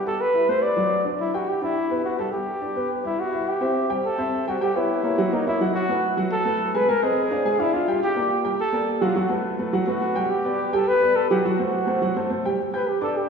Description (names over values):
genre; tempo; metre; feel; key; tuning
jazz; 211 BPM; 4/4; straight; G major; A4 = 441 Hz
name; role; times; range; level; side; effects
dark trumpet; melody; 0.0-13.3 s; Eb4 to D5; -23 LUFS; left 1 dB; none
warm upright piano; accompaniment; 0.0-13.3 s; F#3 to G6; -24 LUFS; right 1 dB; none
room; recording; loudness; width
wet concert hall reverb, RT60 2.1 s; recorded in a church or concert hall, small room reverb; -20 LUFS; side -6 dB against mid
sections
0.0-3.5 A section; 3.5-12.6 B section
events
none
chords
0.1 A5; 0.6 D; 1.2 Gmaj7; 3.5 Am7; 4.6 C#m7b5; 5.2 F#7; 5.7 B5; 6.9 Fm7; 7.5 Fm69; 8.0 Gmadd9; 9.2 B5; 10.3 Gmaj9; 11.4 F#dim; 12.6 G